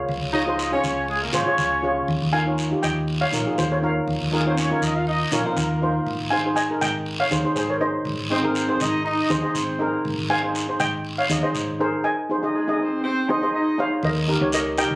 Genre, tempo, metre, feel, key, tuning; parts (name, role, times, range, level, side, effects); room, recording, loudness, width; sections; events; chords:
calypso; 121 BPM; 4/4; swing 54% on 16ths; Ab major; A4 = 440 Hz
steel pan; melody; 0.0-15.0 s; F4 to Ab5; -24 LUFS; equal
steel pan; accompaniment; 0.0-15.0 s; Eb4 to Eb5; -24 LUFS; equal
hollow-body short-scale fingered electric bass; bass; 0.1-15.0 s; Ab1 to Eb2; -27 LUFS; equal
guiro; percussion; 0.1-14.9 s; -30 LUFS; equal
mellow horn section; second line; 0.3-14.0 s; Ab3 to F5; -24 LUFS; equal
moderate small room reverb, RT60 0.5 s; recorded on a phone in the room, club ambience, compression; -20 LUFS; side -22 dB against mid
0.0-14.0 A section
0.0 Db; 2.1 Ebsus2; 6.1 Ab; 14.0 Eb7